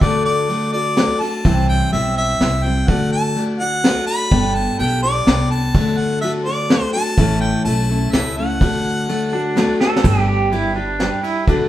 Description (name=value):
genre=honky-tonk and classic country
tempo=126 BPM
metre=3/4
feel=straight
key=G major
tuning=A4 = 440 Hz
part: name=clear harmonica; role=melody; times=0.0-9.8 s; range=D5 to B5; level=-21 LUFS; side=left 1 dB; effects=none
part: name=picked steel-string acoustic guitar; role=accompaniment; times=0.0-11.7 s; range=A2 to D5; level=-20 LUFS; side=left 1 dB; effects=none
part: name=upright bass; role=bass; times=0.0-11.7 s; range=G1 to D2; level=-22 LUFS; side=equal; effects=none
part: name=vintage brush drum kit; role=drums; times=0.0-11.6 s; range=crash cymbal, kick drum, ride cymbal, snare drum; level=-19 LUFS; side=equal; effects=none
part: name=pedal steel guitar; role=second line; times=9.3-11.5 s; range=D4 to A4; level=-21 LUFS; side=right 4 dB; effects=none
room=wet studio reverb, RT60 0.8 s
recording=band playing live in one room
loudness=-15 LUFS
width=side -13 dB against mid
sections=0.0-10.0 A section; 10.0-11.7 A section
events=drum fill 9.8; pedal steel guitar solo 10.0-11.7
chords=0.0 D; 1.4 C; 2.9 D; 4.3 Gadd9; 5.7 D; 7.2 A; 8.6 D; 10.0 G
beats=| 0.02 0.49 0.97 | 1.45 1.93 2.40 | 2.88 3.36 3.84 | 4.32 4.79 5.27 | 5.75 6.23 6.70 | 7.18 7.66 8.14 | 8.61 9.09 9.57 | 10.04 10.52 11.00 | 11.48